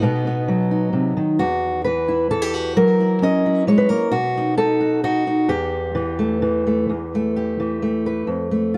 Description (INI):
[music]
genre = folk, solo fingerstyle acoustic guitar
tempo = 131 BPM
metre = 3/4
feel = straight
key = E harmonic minor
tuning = A4 = 440 Hz
[part]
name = fingerpicked steel-string acoustic guitar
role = solo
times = 0.0-8.8 s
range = E2 to D#5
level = -20 LUFS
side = equal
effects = tape echo
[sound]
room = light reverb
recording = dark, warm production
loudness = -20 LUFS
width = mono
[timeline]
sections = 0.0-6.9 A section; 6.9-8.8 B section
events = none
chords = 0.0 B; 1.4 N.C.; 2.8 F#7; 4.1 B7; 5.5 Em; 8.3 F